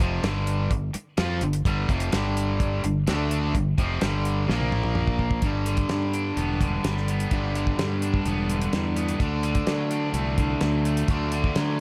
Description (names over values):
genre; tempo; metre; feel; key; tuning
classic rock; 127 BPM; 4/4; straight; G major from 5.4 s; A4 = 441 Hz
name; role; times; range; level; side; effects
cranked stack guitar; riff; 0.0-11.8 s; F2 to F4; -31 LUFS; equal; overdrive
crunchy overdriven guitar; riff; 0.0-11.8 s; F2 to F4; -33 LUFS; equal; none
modern bright fingered electric bass; bass; 0.0-11.8 s; E1 to D3; -29 LUFS; equal; none
damped 70s drum kit; drums; 0.0-11.7 s; hi-hat, kick drum, snare drum, toms; -29 LUFS; equal; none
room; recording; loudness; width
light reverb; none; -25 LUFS; mono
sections
0.0-5.4 A section; 5.4-11.8 B section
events
drum fill 4.5-5.4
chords
0.0 G5; 3.1 D5; 3.5 G5; 4.5 Bb5; 5.4 G; 9.2 D